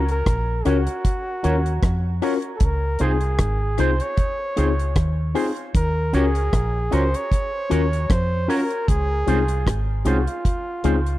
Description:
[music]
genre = lovers rock reggae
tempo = 77 BPM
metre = 4/4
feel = swing 55% on 16ths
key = Db major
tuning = A4 = 440 Hz
[part]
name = warm flugelhorn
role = melody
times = 0.0-11.1 s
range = F4 to Db5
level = -27 LUFS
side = right 1 dB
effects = tape echo
[part]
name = tine electric piano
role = accompaniment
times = 0.0-11.0 s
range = C4 to Bb4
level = -24 LUFS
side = left 5 dB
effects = slow stereo tremolo
[part]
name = deep dub fingered electric bass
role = bass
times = 0.0-11.2 s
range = Ab1 to F2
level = -21 LUFS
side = equal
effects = none
[part]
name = deep reggae drum kit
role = drums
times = 0.1-11.2 s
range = hi-hat, kick drum, rim click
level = -22 LUFS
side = equal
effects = tape echo
[part]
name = electric guitar with an envelope filter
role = stabs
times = 0.7-11.0 s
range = Ab3 to Db5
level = -29 LUFS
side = right 3 dB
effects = spring reverb
[sound]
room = studio reverb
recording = dry, close 1970s-style studio recording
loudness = -19 LUFS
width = side -16 dB against mid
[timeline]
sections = 0.0-11.2 A section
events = none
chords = 0.0 Ebm7; 2.6 Dbmaj7; 5.8 Ebm7; 8.9 Dbmaj7

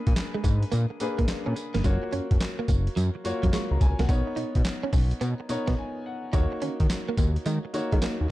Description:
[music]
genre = R&B, new jack swing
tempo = 107 BPM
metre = 4/4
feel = swing 66% on 16ths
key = Eb minor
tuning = A4 = 440 Hz
[part]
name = warm baby grand piano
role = accompaniment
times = 0.0-8.3 s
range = Bb3 to Db6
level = -32 LUFS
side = left 1 dB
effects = none
[part]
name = fat analog bass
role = bass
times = 0.1-8.3 s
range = Gb1 to Eb3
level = -26 LUFS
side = equal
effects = none
[part]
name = boom bap sampler-style drum kit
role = drums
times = 0.1-8.2 s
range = handclaps, hi-hat, kick drum, snare drum, tambourine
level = -26 LUFS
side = equal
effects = none
[part]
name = direct-recorded clean electric guitar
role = riff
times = 0.2-8.1 s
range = Gb3 to D#4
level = -32 LUFS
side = right 4 dB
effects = ensemble chorus
[sound]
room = little or no reverb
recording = dark, warm production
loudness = -24 LUFS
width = side -16 dB against mid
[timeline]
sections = 0.0-8.3 A section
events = grand piano fill 5.2-6.3; break 5.8-6.3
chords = 0.0 Bb7b9; 1.8 Gbmaj7; 4.1 Bmaj9; 6.3 Ebm7

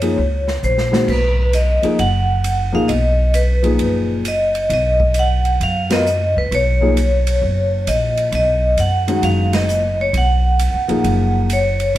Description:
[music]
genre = modal jazz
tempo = 132 BPM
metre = 4/4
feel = swing 66% on 8ths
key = B lydian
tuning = A4 = 440 Hz
[part]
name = vibraphone with medium hard mallets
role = melody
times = 0.0-12.0 s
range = B4 to F#5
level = -18 LUFS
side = equal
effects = none
[part]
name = warm grand piano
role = accompaniment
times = 0.0-11.5 s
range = Bb2 to A#4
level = -19 LUFS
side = left 2 dB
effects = none
[part]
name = upright bass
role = bass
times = 0.0-12.0 s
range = F#1 to Gb2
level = -18 LUFS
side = equal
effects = none
[part]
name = swinging big-band drum kit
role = drums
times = 0.0-12.0 s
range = crash cymbal, hi-hat, kick drum, ride cymbal, snare drum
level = -27 LUFS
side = right 2 dB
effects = none
[sound]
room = moderate studio reverb, RT60 0.9 s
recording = heard from further back in the room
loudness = -14 LUFS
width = side -14 dB against mid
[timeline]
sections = 0.0-1.1 A section; 1.1-12.0 B section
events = drum fill 0.6-1.1; band accent 5.8, 9.5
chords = 0.0 Gbmaj9; 1.1 Bmaj7

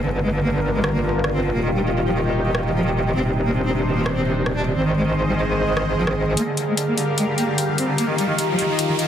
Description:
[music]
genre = heavy wobble dubstep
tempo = 149 BPM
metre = 4/4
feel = half-time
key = G phrygian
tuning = A4 = 440 Hz
[part]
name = rich cello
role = melody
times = 0.0-9.1 s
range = C3 to D4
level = -24 LUFS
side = equal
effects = low-pass filter, ping-pong delay
[part]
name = lush unison pad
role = sustained chords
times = 0.0-9.1 s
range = Eb3 to F5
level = -27 LUFS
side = left 1 dB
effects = chorus, phaser, vintage 12-bit sampler grit
[part]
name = metallic wobble bass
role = bass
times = 0.0-6.4 s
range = Eb1 to Ab1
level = -22 LUFS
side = equal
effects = chorus, overdrive
[part]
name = deep dark ambient pad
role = texture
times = 0.0-9.1 s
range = Eb3 to C6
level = -26 LUFS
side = right 1 dB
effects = chorus, built-in reverb
[part]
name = dubstep drum kit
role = drums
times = 0.8-9.1 s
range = hi-hat, rim click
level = -26 LUFS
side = left 1 dB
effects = high-pass filter on cymbals, high-pass filter on snare, high-pass filter on hats
[part]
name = riser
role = sound effects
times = 7.5-9.1 s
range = none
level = -32 LUFS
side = equal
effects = none
[sound]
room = moderate digital room reverb, RT60 1.1 s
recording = heavily compressed radio sound, multiband compression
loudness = -18 LUFS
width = side -9 dB against mid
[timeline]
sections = 0.0-6.4 A section; 6.4-9.1 B section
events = filter sweep on analog synth pad 0.0-6.4; build-up 6.4-9.1; filter sweep on cello 6.4-9.1; riser 7.5-9.1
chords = 0.0 Gm7; 1.5 Ebadd9; 3.2 Cmadd9/Eb; 4.8 Ab; 6.4 Gm7; 8.0 Ebadd9

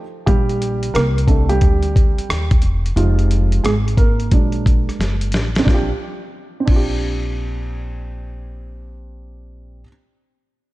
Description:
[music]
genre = hip hop, jazz-hop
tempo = 89 BPM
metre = 4/4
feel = swing 66% on 16ths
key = Bb major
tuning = A4 = 443 Hz
[part]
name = dark upright piano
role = accompaniment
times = 0.0-9.9 s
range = F3 to Bb4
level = -22 LUFS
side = right 3 dB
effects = none
[part]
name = upright bass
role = bass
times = 0.3-9.8 s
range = E1 to Eb2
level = -20 LUFS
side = equal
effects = none
[part]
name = dusty soul sampler-style drum kit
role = drums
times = 0.3-6.9 s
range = crash cymbal, hi-hat, kick drum, rim click, snare drum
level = -17 LUFS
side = equal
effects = none
[sound]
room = small room ambience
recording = dark, warm production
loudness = -15 LUFS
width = side -18 dB against mid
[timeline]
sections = 0.3-5.7 A section; 5.7-8.4 B section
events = break 0.0; upright piano solo 0.3-5.7; drum fill 5.0-5.7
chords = 0.3 Bb6; 3.0 Fm7; 4.3 Bbaug7; 5.7 Bb6

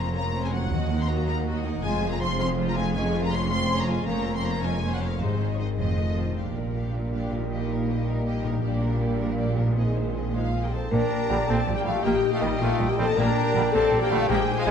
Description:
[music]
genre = cinematic, heroic adventure film score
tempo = 107 BPM (dotted quarters)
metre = 6/8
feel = straight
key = Bb major from 6.4 s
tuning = A4 = 440 Hz
[part]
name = warm symphonic violin section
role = melody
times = 0.0-14.7 s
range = Bb4 to C6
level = -35 LUFS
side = left 3 dB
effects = none
[part]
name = clear symphonic violin section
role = second line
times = 0.0-14.7 s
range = C4 to Bb5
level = -36 LUFS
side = left 2 dB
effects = none
[part]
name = warm symphonic viola section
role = accompaniment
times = 0.0-14.7 s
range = C3 to Ab4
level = -34 LUFS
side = right 2 dB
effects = none
[part]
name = dark French horn section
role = sustained chords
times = 0.0-14.7 s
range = C3 to Bb4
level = -30 LUFS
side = left 3 dB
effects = none
[part]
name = concert harp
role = arpeggios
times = 0.0-14.7 s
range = F2 to C6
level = -32 LUFS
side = left 8 dB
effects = none
[part]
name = rich symphonic cello section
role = bass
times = 0.0-14.7 s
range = Eb2 to Bb2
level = -30 LUFS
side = right 2 dB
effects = none
[part]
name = rich symphonic double bass section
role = bass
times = 0.0-14.7 s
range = F1 to Eb2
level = -29 LUFS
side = right 3 dB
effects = none
[part]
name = clear trombone section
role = sustained chords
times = 6.4-14.7 s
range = Bb2 to Ab3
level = -34 LUFS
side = right 3 dB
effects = none
[part]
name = warm trumpet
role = stabs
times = 10.3-14.7 s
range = G3 to D4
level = -31 LUFS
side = right 3 dB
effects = none
[part]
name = hollow concert flute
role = second line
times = 10.9-14.7 s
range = G5 to Ab5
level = -34 LUFS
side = left 1 dB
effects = none
[part]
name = mellow clarinet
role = second line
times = 10.9-14.7 s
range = C5 to Eb5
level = -34 LUFS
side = right 1 dB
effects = none
[sound]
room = wet scoring stage reverb, RT60 1.6 s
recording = dark, warm production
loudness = -22 LUFS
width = side -7 dB against mid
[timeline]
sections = 0.0-6.4 A section; 6.4-10.9 B section; 10.9-14.7 C section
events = none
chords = 0.0 Bbmadd9/F; 0.7 Ebm; 1.8 Fm; 2.9 Db/F; 4.1 Bbmadd9/F; 5.2 Ab; 5.8 F7; 6.4 Bb6; 7.5 Eb/Bb; 8.6 Gm/Bb; 9.8 Ab/Bb; 10.9 Bb6; 12.1 Eb/Bb; 13.2 Gm/Bb

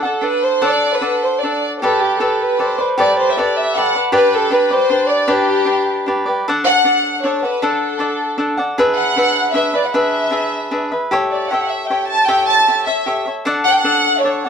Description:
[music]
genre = mexican folk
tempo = 154 BPM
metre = 3/4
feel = straight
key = G major, D major from 6.5 s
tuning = A4 = 438 Hz
[part]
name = dark studio violin section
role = melody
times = 0.0-14.5 s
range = G4 to A5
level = -16 LUFS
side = equal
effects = plate reverb
[part]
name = cavaquinho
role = accompaniment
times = 0.0-14.5 s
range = D4 to F#5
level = -17 LUFS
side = equal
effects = none
[sound]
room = moderate studio reverb, RT60 0.5 s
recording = dark, warm production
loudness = -14 LUFS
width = side -7 dB against mid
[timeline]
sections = 0.0-6.5 A section; 6.5-14.5 B section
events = none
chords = 0.0 D; 1.8 Gadd9; 4.1 G; 6.5 D; 8.8 E7; 11.1 A7; 13.5 D

